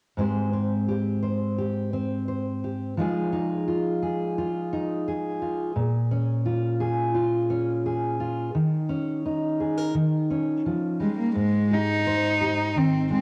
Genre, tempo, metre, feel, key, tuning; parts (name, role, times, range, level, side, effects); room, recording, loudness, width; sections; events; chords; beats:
folk; 86 BPM; 4/4; straight; Ab major; A4 = 440 Hz
fingerpicked steel-string acoustic guitar; accompaniment; 0.2-13.2 s; Ab2 to C5; -26 LUFS; equal
warm cello; melody; 11.0-13.2 s; Ab3 to Eb4; -25 LUFS; equal; cassette tape
moderate spring reverb, RT60 1.7 s, small room reverb; home recording on cassette; -26 LUFS; mono
0.2-11.4 A section; 11.4-13.2 B section
0.2 Abmaj7; 3.0 Fm7; 5.7 Bbm7; 8.5 Eb7sus4; 9.9 Eb7; 11.4 Abmaj7
| 0.17 0.87 1.57 2.27 | 2.97 3.66 4.36 5.05 | 5.75 6.44 7.14 7.83 | 8.53 9.23 9.94 10.64 | 11.36 12.06 12.76